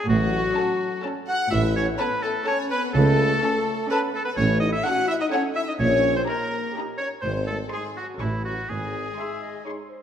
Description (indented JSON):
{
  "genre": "cinematic, playful, whimsical film cue",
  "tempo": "126 BPM",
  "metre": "3/4",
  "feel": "straight",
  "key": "F# minor",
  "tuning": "A4 = 440 Hz",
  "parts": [
    { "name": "bright oboe", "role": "second line", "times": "0.0-9.7 s", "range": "E4 to F#5", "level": "-27 LUFS", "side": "right 1 dB", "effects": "none" },
    { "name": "flute section", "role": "second line", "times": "0.0-9.6 s", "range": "E4 to F#5", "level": "-31 LUFS", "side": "left 4 dB", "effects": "none" },
    { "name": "clear studio violin section", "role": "second line", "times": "0.1-9.6 s", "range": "E4 to F#5", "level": "-34 LUFS", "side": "left 2 dB", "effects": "none" },
    { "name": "mellow French horn section", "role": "sustained chords", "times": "0.1-9.6 s", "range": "E3 to F#4", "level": "-30 LUFS", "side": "left 3 dB", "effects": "none" },
    { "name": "bright studio cello section", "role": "bass", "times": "0.1-9.1 s", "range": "G#2 to C#3", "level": "-27 LUFS", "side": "right 2 dB", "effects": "none" },
    { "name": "clear tuba", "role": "bass", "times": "0.1-9.1 s", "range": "G#1 to C#2", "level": "-29 LUFS", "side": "right 3 dB", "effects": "none" },
    { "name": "rich studio double bass section", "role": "bass", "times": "0.1-9.1 s", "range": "G#1 to C#2", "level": "-28 LUFS", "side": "right 2 dB", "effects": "none" },
    { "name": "clear studio viola section", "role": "accompaniment", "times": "0.5-10.0 s", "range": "C#4 to A4", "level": "-33 LUFS", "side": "right 2 dB", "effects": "none" },
    { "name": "rich studio violin section", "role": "melody", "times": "0.6-10.0 s", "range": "F#5 to C#6", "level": "-33 LUFS", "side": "left 3 dB", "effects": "none" },
    { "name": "clear clarinet", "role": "second line", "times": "9.2-10.0 s", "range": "B#4 to E5", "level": "-37 LUFS", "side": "left 2 dB", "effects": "none" }
  ],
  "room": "wet scoring stage reverb, RT60 1.9 s",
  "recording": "none",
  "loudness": "-21 LUFS",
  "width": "side -9 dB against mid",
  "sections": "0.0-10.0 A section",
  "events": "none",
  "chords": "0.1 F#m/A; 2.9 A/C#; 4.4 F#m/A; 5.8 D#/A#; 7.2 G#; 8.2 A; 8.7 G#"
}